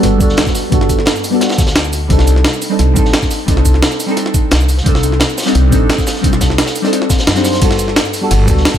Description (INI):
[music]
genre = liquid drum and bass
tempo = 174 BPM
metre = 4/4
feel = straight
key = unclear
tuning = A4 = 440 Hz
[part]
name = deep mellow chord stab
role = accompaniment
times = 0.0-8.8 s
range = G3 to C5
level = -16 LUFS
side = equal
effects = chorus, phaser, diffuse ambient delay
[part]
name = upright bass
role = bass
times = 0.0-8.6 s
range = G1 to F#2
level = -14 LUFS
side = equal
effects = none
[part]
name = breakbeat sampler-style drum kit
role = drums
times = 0.0-8.8 s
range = hi-hat, ride cymbal, shaker, snare drum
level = -17 LUFS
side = equal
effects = none
[part]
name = crunchy breakbeat drum kit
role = drums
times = 0.0-8.8 s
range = hi-hat, snare drum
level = -23 LUFS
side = equal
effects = high-pass filter on hats, high-pass filter on snare, high-pass filter on room
[part]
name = electronic kick drum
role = drums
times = 0.2-8.8 s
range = none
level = -15 LUFS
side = equal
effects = none
[sound]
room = light reverb, studio reverb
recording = none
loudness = -10 LUFS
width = side -10 dB against mid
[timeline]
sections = 0.0-8.8 A section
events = none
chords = 0.0 Gmaj9; 2.1 Cm6; 7.6 Gmaj9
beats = 0.03 0.38 | 0.72 1.07 1.41 1.76 | 2.10 2.45 2.79 3.14 | 3.48 3.83 4.17 4.51 | 4.86 5.21 5.55 5.89 | 6.24 6.58 6.93 7.27 | 7.62 7.96 8.31 8.65